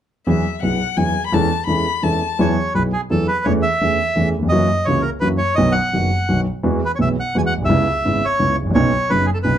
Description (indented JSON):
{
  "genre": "tango",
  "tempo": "170 BPM",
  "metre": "3/4",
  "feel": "rubato",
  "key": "E major",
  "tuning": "A4 = 439 Hz",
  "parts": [
    { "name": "warm violin", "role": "second line", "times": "0.3-2.4 s", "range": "E5 to B5", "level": "-22 LUFS", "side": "left 7 dB", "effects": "none" },
    { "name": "warm concert grand piano", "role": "accompaniment", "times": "0.3-9.6 s", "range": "F#1 to A4", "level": "-17 LUFS", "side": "equal", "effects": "none" },
    { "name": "bandoneon", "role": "melody", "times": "2.4-9.6 s", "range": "G#4 to G#5", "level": "-20 LUFS", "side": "right 1 dB", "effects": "none" }
  ],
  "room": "moderate club reverb, RT60 0.7 s",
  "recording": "dark, warm production",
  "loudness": "-16 LUFS",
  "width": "side -10 dB against mid",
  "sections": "0.3-2.4 A section; 2.4-9.6 B section",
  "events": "none",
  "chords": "0.3 Eadd9; 1.3 Amaj7/E; 2.4 Eadd9; 3.5 Amaj7/E; 4.5 F#7; 5.6 B; 6.6 Eadd9; 7.7 C#m7; 8.7 Badd9"
}